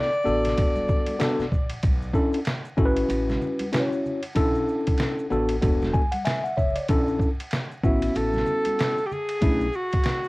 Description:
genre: hip hop, jazz-hop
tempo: 95 BPM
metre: 4/4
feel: swing 60% on 16ths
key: B dorian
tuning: A4 = 440 Hz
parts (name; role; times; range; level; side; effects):
- breathy alto saxophone; melody; 0.0-1.5, 7.8-10.3 s; E4 to D5; -26 LUFS; equal; tape echo
- tine electric piano; accompaniment; 0.0-9.7 s; A3 to G#5; -24 LUFS; left 1 dB; medium stereo tremolo, cassette tape
- maracas and congas; percussion; 0.1-10.3 s; none; -38 LUFS; right 1 dB; none
- upright bass; bass; 0.3-9.7 s; E1 to B1; -30 LUFS; equal; tube saturation
- trip hop sampler-style drum kit; drums; 0.4-10.2 s; hi-hat, kick drum, ride cymbal, snare drum; -25 LUFS; equal; cassette tape
room: light reverb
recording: home recording on cassette, vinyl crackle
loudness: -21 LUFS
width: side -22 dB against mid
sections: 0.0-10.3 A section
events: tine electric piano fill 5.6-6.9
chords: 0.0 Bm7; 0.6 E9sus4; 1.8 Bm11; 2.8 A6; 4.4 Bm11; 5.6 E9sus4; 6.9 Bm11; 7.8 A6; 9.4 Bm11

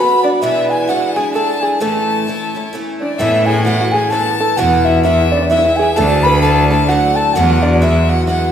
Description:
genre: celtic folk, Celtic waltz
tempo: 130 BPM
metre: 3/4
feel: swing 60% on 8ths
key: A major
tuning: A4 = 438 Hz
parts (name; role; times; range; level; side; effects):
- mellow hollow baroque flute; melody; 0.0-8.5 s; D5 to B5; -16 LUFS; equal; none
- clear fiddle; second line; 0.0-8.5 s; D5 to B5; -24 LUFS; left 4 dB; none
- open-back banjo; second line; 0.0-8.5 s; D4 to B4; -21 LUFS; right 3 dB; none
- picked twelve-string acoustic guitar; accompaniment; 0.0-8.5 s; E2 to F#4; -19 LUFS; equal; none
- bright cello; bass; 3.2-8.4 s; D2 to A2; -15 LUFS; equal; none
room: wet recital hall reverb, RT60 1.7 s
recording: recorded in a church or concert hall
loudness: -12 LUFS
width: side -9 dB against mid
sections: 0.0-3.2 A section; 3.2-8.5 A section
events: none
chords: 0.4 E7; 1.8 A; 3.2 Aadd9; 4.6 E; 6.0 Dadd9; 7.4 Eadd9

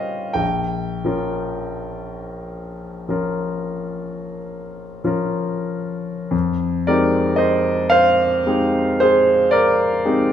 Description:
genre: classical, impressionist solo piano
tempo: 29-39 BPM (dotted quarters)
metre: 9/8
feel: rubato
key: F minor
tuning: A4 = 439 Hz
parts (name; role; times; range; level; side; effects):
- clear grand piano; solo; 0.0-10.3 s; Bb1 to G5; -18 LUFS; equal; none
room: moderate recital hall reverb, RT60 1.7 s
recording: minimal, uncompressed stereo recording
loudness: -17 LUFS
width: side -10 dB against mid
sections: 0.0-6.3 A section; 6.3-10.3 A section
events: none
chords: 0.4 Bbm6; 6.3 Fm9

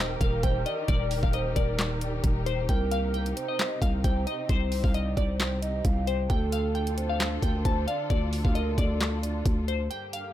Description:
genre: hip hop, trap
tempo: 133 BPM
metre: 4/4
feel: half-time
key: unclear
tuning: A4 = 439 Hz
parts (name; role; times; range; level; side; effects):
- glassy wavetable pluck; melody; 0.0-10.3 s; C5 to A5; -34 LUFS; left 5 dB; chorus, low-pass filter
- hollow clarinet-like synth lead; second line; 0.0-9.4 s; A4 to G5; -35 LUFS; right 5 dB; chorus, ping-pong delay
- muted studio string section; sustained chords; 0.0-10.3 s; G2 to Bb4; -37 LUFS; left 1 dB; none
- growling 808-style bass; bass; 0.0-9.9 s; Eb1 to D2; -29 LUFS; equal; none
- trap drum kit; drums; 0.2-10.2 s; handclaps, hi-hat, kick drum, snare drum; -27 LUFS; equal; none
room: digital ambience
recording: none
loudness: -25 LUFS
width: side -12 dB against mid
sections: 0.0-9.9 A section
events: none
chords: 0.0 Eb; 2.7 Cm; 6.3 Dm

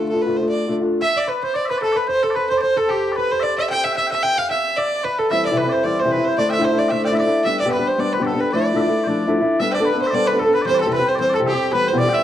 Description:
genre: celtic folk, Celtic reel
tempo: 224 BPM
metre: 4/4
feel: swing 55% on 8ths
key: D dorian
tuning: A4 = 441 Hz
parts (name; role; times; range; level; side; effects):
- rich fiddle; melody; 0.0-12.2 s; G4 to G5; -21 LUFS; right 1 dB; none
- fingerpicked old ladder-braced acoustic guitar; accompaniment; 0.0-1.0, 5.3-12.2 s; E2 to A4; -19 LUFS; left 1 dB; none
- concert harp; second line; 1.0-12.2 s; G4 to G5; -24 LUFS; right 2 dB; none
- mellow small bagpipes; second line; 1.0-12.2 s; G4 to G5; -26 LUFS; left 3 dB; none
room: moderate studio reverb, RT60 0.6 s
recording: dark, warm production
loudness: -16 LUFS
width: side -11 dB against mid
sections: 0.0-1.0 A section; 1.0-9.6 B section; 9.6-12.2 B section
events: none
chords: 0.0 Dm; 1.0 N.C.; 5.3 C; 6.4 Dsus2; 7.5 G; 8.5 Dmadd9; 9.6 Gadd9; 10.7 C; 11.7 Em

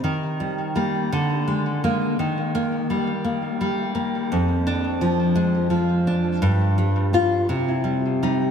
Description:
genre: romantic piece for solo classical guitar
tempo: 56 BPM (dotted quarters)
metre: 6/8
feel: rubato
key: unclear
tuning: A4 = 441 Hz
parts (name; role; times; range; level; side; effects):
- nylon-string guitar; solo; 0.0-8.5 s; F2 to F4; -20 LUFS; equal; wide subtle chorus, ping-pong delay
room: wet plate reverb, RT60 3.6 s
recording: dreamy mix soaked in reverb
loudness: -20 LUFS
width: side -7 dB against mid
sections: 0.0-8.5 A section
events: none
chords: 0.1 Eb; 1.1 Bb7/D; 2.2 Eb; 4.3 Ddim/F; 6.4 Fsus2/G; 7.5 Cm

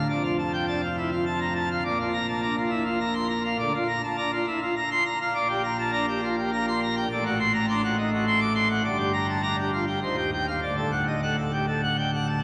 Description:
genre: classical, organ toccata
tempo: 103 BPM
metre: 3/4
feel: straight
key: unclear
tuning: A4 = 437 Hz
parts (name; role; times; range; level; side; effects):
- pipe organ, plenum; solo; 0.0-12.4 s; D1 to D6; -26 LUFS; equal; none
room: wet cathedral reverb, RT60 6.3 s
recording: none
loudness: -26 LUFS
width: mono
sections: 0.0-12.4 A section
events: none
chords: 0.1 Dm/F; 1.8 Bb; 3.6 Bb/D; 5.3 Gm/Bb; 7.1 D7/A; 8.8 Gm; 10.0 Cm/Eb; 10.6 D

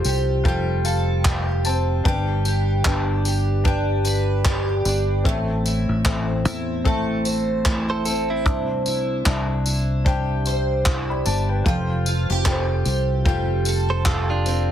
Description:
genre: acoustic pop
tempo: 75 BPM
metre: 4/4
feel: swing 60% on 16ths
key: C major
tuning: A4 = 440 Hz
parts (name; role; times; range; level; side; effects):
- felt-muted upright piano; accompaniment; 0.0-14.7 s; C4 to B5; -29 LUFS; left 5 dB; plate reverb
- picked twelve-string acoustic guitar; accompaniment; 0.0-14.7 s; A2 to C5; -25 LUFS; right 1 dB; double-tracked left and right, plate reverb
- fingered electric bass; bass; 0.0-14.7 s; F1 to E2; -23 LUFS; equal; none
- vintage brush drum kit; drums; 0.0-14.7 s; handclaps, kick drum, tambourine; -24 LUFS; equal; none
- direct-recorded clean electric guitar; second line; 7.9-8.7, 13.9-14.7 s; C4 to C5; -26 LUFS; right 4 dB; plate reverb
room: light reverb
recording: heavily compressed radio sound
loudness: -19 LUFS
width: side -10 dB against mid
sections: 0.0-14.7 A section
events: felt piano fill 0.5-2.1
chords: 0.0 Fadd9; 2.1 G; 5.3 Am; 8.5 Cadd9; 11.7 Fadd9

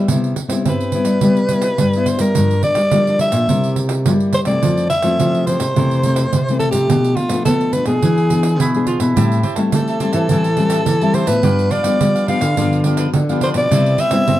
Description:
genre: samba and choro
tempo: 106 BPM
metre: 4/4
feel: straight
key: C major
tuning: A4 = 445 Hz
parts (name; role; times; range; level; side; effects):
- cavaquinho; accompaniment; 0.0-0.1, 9.2-14.4 s; D4 to A5; -26 LUFS; right 5 dB; none
- nylon-string guitar; accompaniment; 0.0-14.4 s; F2 to G#4; -21 LUFS; left 4 dB; none
- nylon-string guitar; bass; 0.0-14.4 s; G2 to C4; -18 LUFS; equal; none
- pandeiro; percussion; 0.1-14.4 s; none; -21 LUFS; right 5 dB; none
- growling soprano saxophone; melody; 0.7-14.4 s; F4 to F5; -18 LUFS; equal; none
- breathy tenor saxophone; second line; 8.6-9.6 s; E4 to F4; -23 LUFS; right 3 dB; none
room: light reverb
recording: dark, warm production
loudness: -14 LUFS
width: side -14 dB against mid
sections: 0.1-14.4 A section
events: none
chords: 0.1 Cmaj7; 2.4 Gm7; 3.5 C7; 4.6 Fmaj7; 6.9 Bm7b5; 8.0 E7; 9.2 Am7; 11.4 G7; 13.7 Cmaj7

